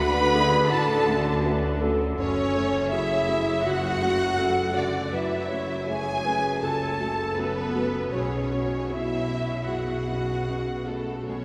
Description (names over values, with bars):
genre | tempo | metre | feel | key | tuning
cinematic | 80 BPM | 4/4 | rubato | F# minor | A4 = 440 Hz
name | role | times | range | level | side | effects
warm symphonic violin section | melody | 0.0-11.4 s | A4 to B5 | -33 LUFS | equal | none
rich studio violin section | second line | 0.0-11.4 s | A4 to B5 | -34 LUFS | equal | none
warm clarinet | second line | 0.0-11.4 s | F#4 to C#5 | -35 LUFS | equal | none
felt-muted upright piano | accompaniment | 0.0-11.4 s | B1 to F#4 | -34 LUFS | equal | none
rich chamber viola section | accompaniment | 0.0-11.4 s | D3 to B4 | -34 LUFS | equal | none
mellow French horn section | sustained chords | 0.0-11.4 s | A3 to D5 | -34 LUFS | equal | none
rich symphonic cello section | bass | 0.0-11.4 s | F#2 to D3 | -34 LUFS | equal | none
rich symphonic double bass section | bass | 0.0-11.4 s | F#1 to D2 | -35 LUFS | equal | none
room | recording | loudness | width
wet church reverb, RT60 3.5 s | none | -25 LUFS | mono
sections
0.0-11.4 A section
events
none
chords
0.0 Dmaj7; 2.2 F#m7; 8.1 Bsus2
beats
0.70 1.45 | 2.18 2.91 3.65 4.38 | 5.13 5.88 6.63 7.38 | 8.13 8.89 9.67 10.46 | 11.27